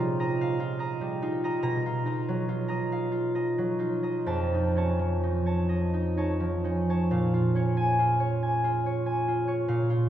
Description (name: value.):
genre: classical, solo harp piece.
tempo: 40-51 BPM (dotted quarters).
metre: 6/8.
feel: rubato.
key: unclear.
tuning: A4 = 440 Hz.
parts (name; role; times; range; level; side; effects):
concert harp; solo; 0.0-10.1 s; F2 to C6; -25 LUFS; right 1 dB; none.
room: wet concert hall reverb, RT60 2.4 s.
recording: heard from further back in the room.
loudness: -25 LUFS.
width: side -11 dB against mid.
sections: 0.0-7.1 A section; 7.1-10.1 B section.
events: none.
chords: 0.0 Cm7; 1.6 Bmaj7#11; 4.2 Faug7; 7.1 Bbm7.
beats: 0.37 | 1.59 2.86 | 4.25 5.67 | 7.10 8.39 | 9.66.